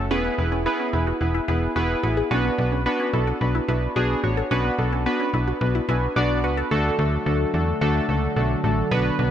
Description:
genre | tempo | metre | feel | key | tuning
synth-pop | 109 BPM | 4/4 | straight | unclear | A4 = 439 Hz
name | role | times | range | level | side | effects
warm analog keys | accompaniment | 0.0-9.3 s | A3 to G#5 | -23 LUFS | right 1 dB | chorus
resonant blip pluck | arpeggios | 0.0-6.7 s | B3 to A4 | -30 LUFS | left 2 dB | phaser, tape echo
slap-like FM bass | bass | 0.0-9.3 s | E1 to E2 | -24 LUFS | equal | none
chorused pulse-width pad | sustained chords | 6.7-9.3 s | D3 to B4 | -28 LUFS | equal | none
room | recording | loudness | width
moderate lush hall reverb, RT60 3.2 s | none | -20 LUFS | side -10 dB against mid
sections
0.0-6.7 A section; 6.7-9.3 B section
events
synth keys fill 5.6-6.7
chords
0.1 E; 2.3 Bm; 6.7 D

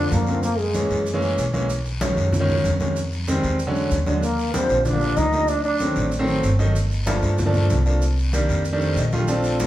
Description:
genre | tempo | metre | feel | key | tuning
Afro-Cuban jazz | 190 BPM | 4/4 | straight | unclear | A4 = 440 Hz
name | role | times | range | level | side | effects
breathy trombone | melody | 0.0-1.2, 4.2-6.2, 9.6-9.7 s | Ab3 to Eb4 | -23 LUFS | equal | none
mellow hollow concert flute | second line | 0.0-1.2, 4.2-6.2 s | Ab4 to Eb5 | -28 LUFS | left 1 dB | none
warm baby grand piano | accompaniment | 0.0-9.6 s | D3 to G5 | -23 LUFS | right 1 dB | none
upright bass | bass | 0.0-9.7 s | G1 to G2 | -23 LUFS | equal | none
congas | percussion | 0.1-9.7 s | none | -30 LUFS | left 1 dB | none
guiro | percussion | 0.1-9.7 s | none | -36 LUFS | left 3 dB | none
maracas | percussion | 0.1-9.7 s | none | -38 LUFS | right 3 dB | none
room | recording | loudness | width
wet large studio reverb, RT60 0.9 s | band playing live in one room | -19 LUFS | side -14 dB against mid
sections
0.0-9.3 A section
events
grand piano fill 8.7-9.3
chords
0.4 Gb9; 1.7 B6; 3.0 Fm9; 3.6 E13; 4.2 Ebmaj9; 5.5 D7b9; 6.8 Gm7; 8.0 Cm9; 8.7 F13

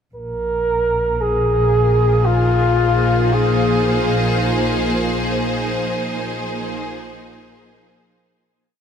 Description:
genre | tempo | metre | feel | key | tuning
ambient | 57 BPM | 4/4 | straight | unclear | A4 = 442 Hz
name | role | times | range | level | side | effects
clear studio string section | sustained chords | 0.1-8.5 s | F3 to C5 | -23 LUFS | equal | shimmer reverb
dark symphonic double bass section | bass | 0.1-8.5 s | Bb1 | -21 LUFS | equal | none
bowed-like drone | drone | 1.2-8.6 s | Bb3 to F4 | -27 LUFS | left 1 dB | built-in reverb, phaser
mellow flugelhorn | melody | 0.2-4.4 s | F4 to Bb4 | -19 LUFS | equal | shimmer reverb, diffuse ambient delay
room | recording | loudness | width
wet huge ambient reverb, RT60 9.1 s | none | -16 LUFS | side -8 dB against mid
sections
0.1-8.5 A section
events
fade-in on string section 0.1-8.5; fade-in on synth drone 0.1-8.5; fade-out on double bass section 0.1-8.5; fade-out 4.3-8.5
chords
0.1 Bb5

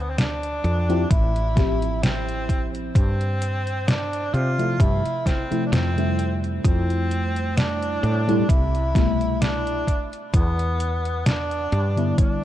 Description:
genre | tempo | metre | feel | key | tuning
vaporwave | 65 BPM | 4/4 | swing 54% on 16ths | unclear | A4 = 440 Hz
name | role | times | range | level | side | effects
warm tenor saxophone | melody | 0.0-12.4 s | B3 to F4 | -27 LUFS | right 1 dB | tape echo
woody fretless electric bass | bass | 0.0-12.1 s | A1 to C3 | -24 LUFS | equal | none
detuned 8-bit digital drum machine | drums | 0.2-12.4 s | hi-hat, snare drum | -24 LUFS | equal | overdrive, vintage 12-bit sampler grit
mellow FM electric piano | accompaniment | 0.9-12.4 s | B2 to G4 | -26 LUFS | left 1 dB | phaser, lush chorus
electronic kick drum | drums | 1.1-12.4 s | none | -20 LUFS | equal | overdrive, vintage 12-bit sampler grit
room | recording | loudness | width
light reverb | cassette tape | -20 LUFS | side -12 dB against mid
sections
0.0-12.4 A section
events
none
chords
0.0 Dm11; 3.0 G13sus4; 6.2 Fmaj9#11; 9.9 Em7

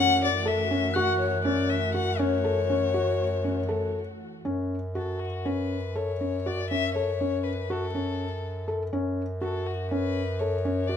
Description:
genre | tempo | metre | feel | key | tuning
contemporary instrumental, chamber music in an uneven meter | 242 BPM (eighths) | 9/8 | straight | F# minor | A4 = 440 Hz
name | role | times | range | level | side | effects
dark violin | melody | 0.0-11.0 s | F#4 to F#5 | -29 LUFS | left 6 dB | none
warm studio string section | sustained chords | 0.0-4.4 s | E3 to F#4 | -37 LUFS | right 2 dB | none
felt-muted upright piano | arpeggios | 0.0-11.0 s | C#4 to A4 | -29 LUFS | left 1 dB | none
mellow bass clarinet | bass | 0.0-11.0 s | F#2 | -30 LUFS | equal | none
glockenspiel with hard plastic mallets | texture | 0.9-1.8 s | F#6 | -34 LUFS | left 3 dB | none
room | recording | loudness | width
light reverb | close, detailed microphones | -25 LUFS | side -8 dB against mid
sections
0.0-4.5 A section; 4.5-11.0 B section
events
none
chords
0.0 F#m7; 4.5 F#m

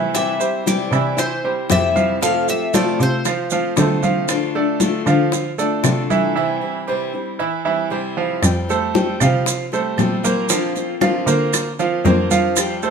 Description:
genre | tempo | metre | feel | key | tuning
latin, Cuban son and guajira | 116 BPM | 4/4 | straight | F major | A4 = 439 Hz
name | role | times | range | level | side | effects
picked steel-string acoustic guitar | accompaniment | 0.0-12.9 s | C3 to G4 | -24 LUFS | left 7 dB | none
bright concert grand piano | arpeggios | 0.0-12.9 s | E3 to F5 | -21 LUFS | right 5 dB | none
muted cello | bass | 0.0-12.9 s | F2 to D3 | -21 LUFS | right 1 dB | none
Cuban tres | melody | 0.1-4.0 s | C5 to F5 | -22 LUFS | left 4 dB | none
bongos | percussion | 0.1-12.9 s | none | -25 LUFS | left 7 dB | none
congas | percussion | 0.1-12.9 s | none | -24 LUFS | left 1 dB | none
maracas | percussion | 0.1-12.9 s | none | -25 LUFS | right 7 dB | none
flamenco guitar | second line | 0.2-4.0 s | E4 to A4 | -27 LUFS | right 1 dB | none
claves | percussion | 0.2-12.8 s | none | -28 LUFS | right 8 dB | none
room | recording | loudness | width
moderate studio reverb, RT60 0.8 s | minimal, uncompressed stereo recording | -16 LUFS | side -6 dB against mid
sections
0.0-8.4 A section; 8.4-12.9 B section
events
break 6.4-8.4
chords
0.1 C; 2.2 F; 4.3 Dm; 6.4 C; 8.4 Fadd9; 10.5 Bbadd9

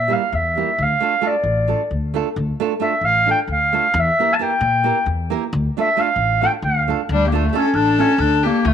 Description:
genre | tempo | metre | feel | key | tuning
balkan folk, Balkan wedding band | 267 BPM (eighths) | 7/8 | straight | D harmonic minor | A4 = 442 Hz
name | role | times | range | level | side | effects
dark clarinet | melody | 0.0-8.7 s | G3 to A5 | -17 LUFS | equal | none
upright bass | bass | 0.0-8.7 s | A1 to Bb2 | -22 LUFS | left 2 dB | none
nylon-string guitar | accompaniment | 0.1-8.6 s | G3 to Bb4 | -25 LUFS | right 10 dB | none
warm violin | second line | 7.1-8.7 s | D4 to A4 | -22 LUFS | left 16 dB | tape echo
room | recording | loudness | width
light reverb, small room ambience | 1960s-style stereo with parts hard left and right | -16 LUFS | side -8 dB against mid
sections
0.0-7.1 A section; 7.1-8.7 B section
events
clarinet solo 0.0-7.1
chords
0.0 Edim; 0.8 Dm; 4.0 Edim; 5.5 Dm

